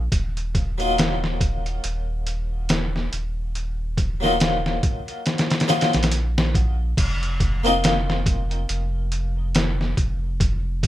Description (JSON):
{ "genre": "trip hop", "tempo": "70 BPM", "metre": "4/4", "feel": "swing 58% on 16ths", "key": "unclear", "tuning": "A4 = 440 Hz", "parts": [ { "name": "warm sub bass", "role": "bass", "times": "0.0-10.9 s", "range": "Eb1 to Bb1", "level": "-25 LUFS", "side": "equal", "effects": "none" }, { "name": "trip hop sampler-style drum kit", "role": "drums", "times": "0.1-10.9 s", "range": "crash cymbal, hi-hat, kick drum, snare drum", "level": "-22 LUFS", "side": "equal", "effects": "none" }, { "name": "harpsichord", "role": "accompaniment", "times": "0.8-10.9 s", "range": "Gb3 to F4", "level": "-24 LUFS", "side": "left 2 dB", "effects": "tremolo, tape echo" } ], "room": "little or no reverb", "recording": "rough home demo mix", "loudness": "-20 LUFS", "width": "side -14 dB against mid", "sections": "0.0-7.0 A section; 7.0-10.9 B section", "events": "none", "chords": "0.1 Ebmadd9; 7.0 F7sus4" }